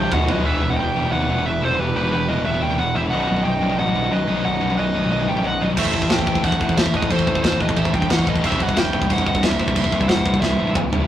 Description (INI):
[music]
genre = heavy metal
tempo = 180 BPM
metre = 4/4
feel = straight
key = unclear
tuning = A4 = 439 Hz
[part]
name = high-gain lead guitar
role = melody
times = 0.0-10.7 s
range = B4 to G5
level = -24 LUFS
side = equal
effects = distortion
[part]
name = nasal lead guitar with a parked wah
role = second line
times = 0.0-10.7 s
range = G4 to E5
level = -31 LUFS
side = right 4 dB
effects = overdrive
[part]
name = high-gain distorted guitar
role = riff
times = 0.0-11.1 s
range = B1 to A3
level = -26 LUFS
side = right 4 dB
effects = distortion
[part]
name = overdriven electric guitar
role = riff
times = 0.0-11.1 s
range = B1 to A4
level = -28 LUFS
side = equal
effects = none
[part]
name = scooped high-gain guitar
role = riff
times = 0.0-11.1 s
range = B1 to A3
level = -25 LUFS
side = left 5 dB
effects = distortion
[part]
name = fuzz picked electric bass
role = bass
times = 0.0-11.1 s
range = B0 to D#2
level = -25 LUFS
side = equal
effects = overdrive
[part]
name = tight metal drum kit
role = drums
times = 0.1-0.4, 5.8-11.0 s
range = china cymbal, crash cymbal, kick drum, snare drum, toms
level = -21 LUFS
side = equal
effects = none
[sound]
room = light reverb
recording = rough rehearsal-room recording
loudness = -17 LUFS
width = side -11 dB against mid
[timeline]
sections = 0.5-11.1 A section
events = drum fill 0.0-0.5, 10.4-11.1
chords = 0.1 B; 0.5 Em; 3.1 B; 5.8 Am; 8.4 C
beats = 0.12 | 0.45 0.78 1.12 1.45 | 1.78 2.12 2.45 2.78 | 3.12 3.45 3.78 4.11 | 4.45 4.78 5.11 5.44 | 5.78 6.11 6.44 6.77 | 7.11 7.44 7.77 8.10 | 8.43 8.76 9.10 9.43 | 9.76 10.09 10.42 10.75